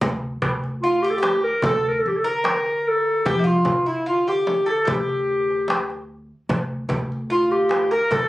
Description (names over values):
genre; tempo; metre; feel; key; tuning
Turkish makam ensemble; 74 BPM; 4/4; straight; D makam ussak; A4 = 443 Hz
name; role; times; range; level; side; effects
upright bass; bass; 0.0-8.3 s; D2 to D3; -30 LUFS; equal; none
darbuka; percussion; 0.0-8.3 s; none; -26 LUFS; equal; none
frame drum; percussion; 0.0-8.3 s; none; -28 LUFS; equal; none
mellow clarinet; melody; 0.8-8.3 s; E4-27c to Bb4; -20 LUFS; equal; none
Greek bouzouki; second line; 0.8-8.3 s; E4-30c to Bb4; -29 LUFS; right 1 dB; none
room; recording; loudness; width
moderate small room reverb, RT60 0.5 s; recorded on a phone in the room, studio ambience; -19 LUFS; side -17 dB against mid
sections
0.0-8.3 A section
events
none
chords
none